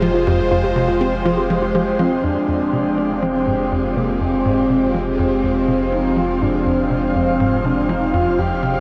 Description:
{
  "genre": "ambient, sequencer-driven space music",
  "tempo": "122 BPM",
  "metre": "4/4",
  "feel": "straight",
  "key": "F dorian",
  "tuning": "A4 = 441 Hz",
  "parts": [
    { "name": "phased analog pad", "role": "sustained chords", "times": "0.0-8.8 s", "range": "F3 to F5", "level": "-21 LUFS", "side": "equal", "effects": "phaser, chorus" },
    { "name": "tight sequencer bass", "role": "riff", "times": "0.0-8.8 s", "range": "F2 to C4", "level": "-25 LUFS", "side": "equal", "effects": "subtle chorus, analog delay" },
    { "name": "warm sub bass", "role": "bass", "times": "0.0-8.8 s", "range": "F1", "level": "-30 LUFS", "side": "equal", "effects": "none" },
    { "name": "warbly dusty pluck", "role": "arpeggios", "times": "0.1-2.2 s", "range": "F4 to G4", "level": "-30 LUFS", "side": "equal", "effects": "none" },
    { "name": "breathy flute-like synth lead", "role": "melody", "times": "2.0-8.8 s", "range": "Bb3 to G4", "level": "-23 LUFS", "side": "equal", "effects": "ensemble chorus, analog delay" }
  ],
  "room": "wet shimmer reverb, RT60 9.2 s",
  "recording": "worn, warbling old tape, cassette tape, warbly pitch drift",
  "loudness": "-18 LUFS",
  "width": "mono",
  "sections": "0.0-2.2 A section; 2.2-8.8 B section",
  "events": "none",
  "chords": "0.0 Fmadd9"
}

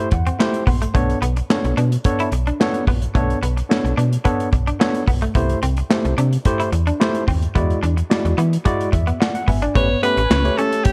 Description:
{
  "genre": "early-eighties boogie funk",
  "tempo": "109 BPM",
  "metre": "4/4",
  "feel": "straight",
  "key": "B phrygian",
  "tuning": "A4 = 439 Hz",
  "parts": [
    { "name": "barky tine electric piano", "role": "accompaniment", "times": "0.0-10.9 s", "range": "G#3 to C6", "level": "-26 LUFS", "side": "equal", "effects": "overdrive" },
    { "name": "semi-hollow electric guitar", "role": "riff", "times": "0.1-10.7 s", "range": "G#3 to E4", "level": "-29 LUFS", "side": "equal", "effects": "lush chorus" },
    { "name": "slap-like FM bass", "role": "bass", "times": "0.1-10.5 s", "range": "G#1 to E3", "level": "-22 LUFS", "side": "equal", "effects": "none" },
    { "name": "modern studio drum kit", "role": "drums", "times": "0.1-10.9 s", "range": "handclaps, hi-hat, kick drum, snare drum", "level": "-23 LUFS", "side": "equal", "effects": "gated reverb" },
    { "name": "breathy alto saxophone", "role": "melody", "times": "9.8-10.9 s", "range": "G4 to C#5", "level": "-21 LUFS", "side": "equal", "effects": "none" },
    { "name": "mellow synth brass", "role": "second line", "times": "9.8-10.6 s", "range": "B3 to C#5", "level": "-30 LUFS", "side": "equal", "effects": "chorus" }
  ],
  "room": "small room ambience",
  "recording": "none",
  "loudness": "-19 LUFS",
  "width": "mono",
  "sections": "0.0-9.8 A section; 9.8-10.9 B section",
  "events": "tine electric piano fill 0.0-0.9, 8.7-9.8",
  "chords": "0.0 C6; 0.9 Bm9; 5.4 C6; 7.6 E9; 9.8 A9"
}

